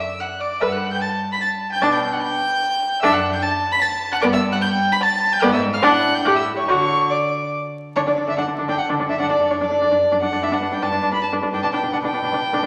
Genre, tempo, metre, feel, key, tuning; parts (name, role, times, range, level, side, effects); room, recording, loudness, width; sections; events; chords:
quick classical-period movement for string quartet; 149 BPM; 3/4; rubato; D major; A4 = 440 Hz
warm violin; melody; 0.0-12.7 s; A4 to B6; -26 LUFS; equal
rich violin; second line; 0.0-12.7 s; C#5 to B5; -24 LUFS; equal
warm viola; accompaniment; 0.6-12.7 s; B3 to B4; -23 LUFS; equal
rich cello; bass; 0.6-12.7 s; F#2 to D3; -30 LUFS; equal
wet recital hall reverb, RT60 1.4 s; vinyl crackle; -20 LUFS; mono
0.0-8.0 A section; 8.0-12.7 A section
0.0 Dadd9; 0.6 G; 1.8 G/B; 3.0 D/F#; 4.2 G; 5.4 E7b9/G#; 5.8 D/A; 6.2 A5; 6.7 D; 8.0 D5; 9.2 D/F#; 10.4 G; 11.6 G/B